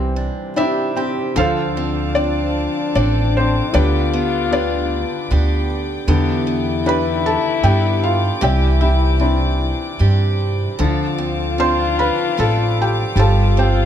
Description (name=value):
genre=acoustic folk-pop ballad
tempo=76 BPM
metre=3/4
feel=straight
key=D dorian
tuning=A4 = 439 Hz
part: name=felt-muted upright piano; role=melody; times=0.0-13.9 s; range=C3 to C6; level=-20 LUFS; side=left 1 dB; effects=none
part: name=picked acoustic archtop guitar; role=arpeggios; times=0.0-13.9 s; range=E3 to A4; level=-25 LUFS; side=right 5 dB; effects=none
part: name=upright bass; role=bass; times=0.0-13.9 s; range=G1 to G2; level=-18 LUFS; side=right 1 dB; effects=none
part: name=warm French horn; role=second line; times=1.4-13.9 s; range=D4 to F4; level=-23 LUFS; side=left 8 dB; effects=none
part: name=warm studio string section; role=sustained chords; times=1.4-13.9 s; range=C4 to D6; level=-29 LUFS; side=left 2 dB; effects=none
room=little or no reverb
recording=close, detailed microphones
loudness=-15 LUFS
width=side -9 dB against mid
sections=0.0-1.4 A section; 1.4-13.9 B section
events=felt piano fill 0.2-1.4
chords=0.0 Cadd9; 1.4 Dm7; 3.7 G/D; 6.1 Em7; 8.4 Cadd9; 10.8 Dm7; 13.2 G7sus4